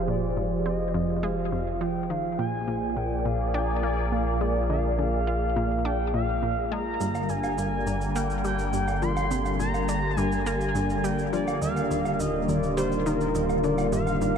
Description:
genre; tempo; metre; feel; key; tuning
ambient, sequencer-driven space music; 104 BPM; 4/4; straight; unclear; A4 = 435 Hz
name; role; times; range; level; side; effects
expressive synth lead; melody; 0.0-14.4 s; Bb4 to C6; -30 LUFS; equal; analog chorus, ping-pong delay
sweeping resonant pad; sustained chords; 0.0-14.4 s; D3 to D5; -28 LUFS; equal; chorus
warm sub bass; bass; 0.0-14.4 s; Eb1 to Bb1; -31 LUFS; equal; none
analog pluck; riff; 0.1-14.4 s; Eb2 to F4; -31 LUFS; left 1 dB; chorus, ping-pong delay
cabasa and woodblock; percussion; 7.0-14.3 s; none; -37 LUFS; right 4 dB; ping-pong delay
room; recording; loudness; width
moderate huge ambient reverb, RT60 8.2 s; dark, warm production; -24 LUFS; side -7 dB against mid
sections
0.0-14.4 A section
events
none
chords
0.0 Fmadd9; 2.4 Bb7; 7.0 Gm; 11.6 Ebmaj7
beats
| 0.08 0.66 1.24 1.81 | 2.39 2.97 3.54 4.12 | 4.70 5.27 5.85 6.43 | 7.00 7.58 8.16 8.73 | 9.31 9.89 10.47 11.04 | 11.62 12.20 12.77 13.35 | 13.93

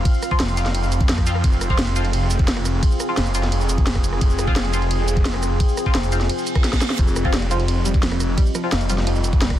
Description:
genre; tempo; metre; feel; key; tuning
dark technical drum and bass; 173 BPM; 4/4; straight; F minor; A4 = 440 Hz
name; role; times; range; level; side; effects
deep dark ambient pad; sustained chords; 0.0-9.6 s; C4 to F5; -26 LUFS; equal; chorus, built-in reverb, sidechain pumping
snarling distorted saw bass; bass; 0.0-9.6 s; F1 to F2; -22 LUFS; equal; distortion, overdrive, sidechain pumping
drum and bass drum kit; drums; 0.1-9.6 s; hi-hat, ride cymbal, rim click, shaker, snare drum; -25 LUFS; equal; none
electronic kick drum; drums; 0.1-9.6 s; none; -18 LUFS; equal; none
band-passed chord stab; stabs; 0.3-9.0 s; F3 to F4; -29 LUFS; left 1 dB; phaser, wide subtle chorus, tape echo
reverse cymbal; sound effects; 6.4-7.0 s; none; -32 LUFS; right 6 dB; none
analog pluck; arpeggios; 7.0-9.5 s; F3 to G3; -29 LUFS; right 2 dB; chorus, phaser, sidechain pumping, tape echo
room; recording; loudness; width
little or no reverb; dense, heavily limited modern master; -17 LUFS; side -12 dB against mid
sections
0.0-9.6 A section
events
reverse cymbal 6.4-7.0; drum fill 6.6-7.0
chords
0.0 F5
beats
| 0.05 0.40 0.75 1.09 | 1.44 1.79 2.13 2.48 | 2.83 3.17 3.52 3.87 | 4.21 4.56 4.91 5.25 | 5.60 5.95 6.29 6.64 | 6.99 7.33 7.68 8.03 | 8.38 8.72 9.07 9.42

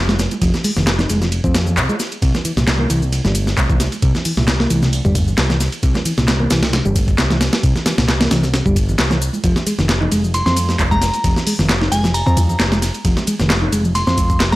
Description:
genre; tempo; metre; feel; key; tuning
breakbeat, breaks; 133 BPM; 4/4; swing 54% on 16ths; unclear; A4 = 440 Hz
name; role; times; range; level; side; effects
overdriven picked electric bass; bass; 0.0-14.6 s; F1 to F2; -18 LUFS; equal; none
picked electric bass; riff; 0.1-14.6 s; Bb2 to Eb4; -21 LUFS; equal; analog delay
breakbeat sampler-style drum kit; drums; 0.1-14.6 s; hi-hat, kick drum, ride cymbal, snare drum; -18 LUFS; equal; none
house drum kit; drums; 0.1-14.6 s; handclaps, ride cymbal, shaker; -25 LUFS; left 1 dB; overdrive
congas; percussion; 0.1-14.6 s; none; -27 LUFS; right 3 dB; none
glassy synth bell; melody; 10.3-14.6 s; Ab5 to C6; -21 LUFS; equal; chorus, AM radio sound, analog delay
room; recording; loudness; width
digital ambience; dry, gritty hardware recording; -14 LUFS; side -18 dB against mid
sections
0.0-14.6 A section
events
none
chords
0.0 N.C.; 2.2 C5; 9.4 N.C.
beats
| 0.42 0.87 1.32 1.77 | 2.22 2.67 3.12 3.58 | 4.03 4.48 4.93 5.38 | 5.83 6.28 6.73 7.18 | 7.64 8.09 8.54 8.99 | 9.44 9.89 10.34 10.79 | 11.25 11.70 12.15 12.60 | 13.05 13.50 13.95 14.40

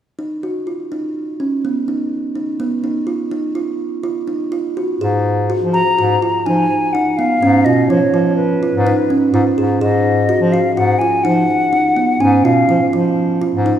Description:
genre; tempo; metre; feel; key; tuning
contemporary instrumental, chamber music in an uneven meter; 125 BPM; 5/4; straight; G# dorian; A4 = 437 Hz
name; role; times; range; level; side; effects
kalimba; arpeggios; 0.2-13.8 s; B3 to G#4; -17 LUFS; right 2 dB; none
clear bass clarinet; bass; 5.0-13.7 s; G#2 to E#3; -18 LUFS; left 2 dB; none
mellow hollow silver concert flute; melody; 5.7-12.9 s; B4 to A#5; -17 LUFS; left 2 dB; none
room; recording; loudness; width
moderate church reverb, RT60 2.7 s; recorded in a church or concert hall; -14 LUFS; side -10 dB against mid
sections
0.2-5.0 A section; 5.0-13.8 B section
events
none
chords
0.2 N.C.; 5.0 G#7(no3); 7.4 C#7/G#; 9.8 G#7(no3); 12.2 C#7/G#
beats
| 0.19 0.67 1.16 1.64 2.12 | 2.60 3.07 3.55 4.03 4.52 | 5.01 5.50 5.98 6.46 6.94 | 7.42 7.90 8.38 8.86 9.34 | 9.81 10.29 10.77 11.25 11.73 | 12.21 12.69 13.17 13.66

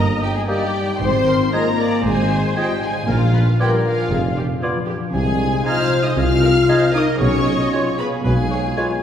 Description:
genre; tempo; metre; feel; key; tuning
cinematic, playful, whimsical film cue; 116 BPM; 4/4; straight; Db major from 5.1 s; A4 = 440 Hz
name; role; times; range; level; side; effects
rich studio violin section; melody; 0.0-9.0 s; F5 to F6; -26 LUFS; left 1 dB; none
warm studio violin section; second line; 0.0-9.0 s; F4 to F5; -26 LUFS; left 2 dB; none
rich studio viola section; accompaniment; 0.0-8.9 s; F4 to Eb5; -26 LUFS; right 1 dB; none
dark French horn section; sustained chords; 0.0-9.0 s; F3 to F4; -23 LUFS; left 2 dB; none
concert harp; arpeggios; 0.0-9.0 s; G2 to Bb5; -24 LUFS; left 3 dB; none
dark tuba; bass; 0.0-8.7 s; F1 to C2; -24 LUFS; right 2 dB; none
rich symphonic double bass section; bass; 0.0-8.7 s; F1 to C2; -26 LUFS; right 2 dB; none
warm studio cello section; bass; 0.0-8.7 s; F2 to C3; -26 LUFS; right 1 dB; none
dark clarinet; second line; 0.5-8.9 s; Eb4 to G4; -32 LUFS; left 2 dB; none
mellow hollow concert flute; second line; 0.5-8.9 s; G6 to Ab6; -30 LUFS; right 2 dB; none
warm cor anglais; second line; 0.5-8.9 s; Db5 to Eb5; -31 LUFS; right 1 dB; none
mellow bassoon; accompaniment; 0.5-8.9 s; Ab3 to Cb4; -32 LUFS; right 2 dB; none
room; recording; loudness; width
wet scoring stage reverb, RT60 1.8 s; heard from further back in the room; -16 LUFS; side -9 dB against mid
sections
0.0-9.0 A section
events
none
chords
0.0 Eb/G; 1.0 Fm7/Ab; 3.1 Bb7b9; 5.1 Ab/C; 7.2 Db7/Cb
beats
0.48 | 1.00 1.53 2.05 2.57 | 3.08 3.60 4.11 4.62 | 5.13 5.65 6.17 6.68 | 7.21 7.72 8.25 8.77

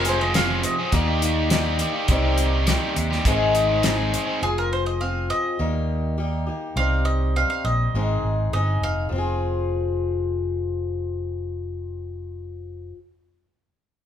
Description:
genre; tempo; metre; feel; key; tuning
folk rock and heartland rock; 102 BPM; 4/4; straight; F minor; A4 = 444 Hz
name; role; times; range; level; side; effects
bowl-back mandolin; melody; 0.0-9.1 s; Ab4 to F5; -26 LUFS; right 2 dB; none
picked swing-style acoustic guitar; accompaniment; 0.0-13.0 s; Ab2 to Ab4; -26 LUFS; left 4 dB; none
biting overdriven guitar; riff; 0.0-4.4 s; F2 to Ab4; -25 LUFS; right 2 dB; none
fingered electric bass; bass; 0.0-12.9 s; F1 to Eb2; -25 LUFS; right 1 dB; none
damped 70s drum kit; drums; 0.0-4.3 s; hi-hat, kick drum, snare drum; -24 LUFS; equal; none
room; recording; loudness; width
moderate large studio reverb, RT60 0.8 s; band playing live in one room; -20 LUFS; side -9 dB against mid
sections
0.0-9.1 A section; 9.1-11.5 B section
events
mandolin solo 0.0-9.1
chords
0.0 Fm; 0.9 Eb; 2.1 Cm; 3.3 Ab; 4.4 Fm; 5.6 Eb; 6.8 Cm; 7.9 Ab; 9.1 Fm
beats
0.34 0.92 1.50 | 2.08 2.67 3.25 3.83 | 4.42 5.00 5.59 6.17 | 6.76 7.34 7.93 8.52 | 9.10 9.69 10.28 10.86

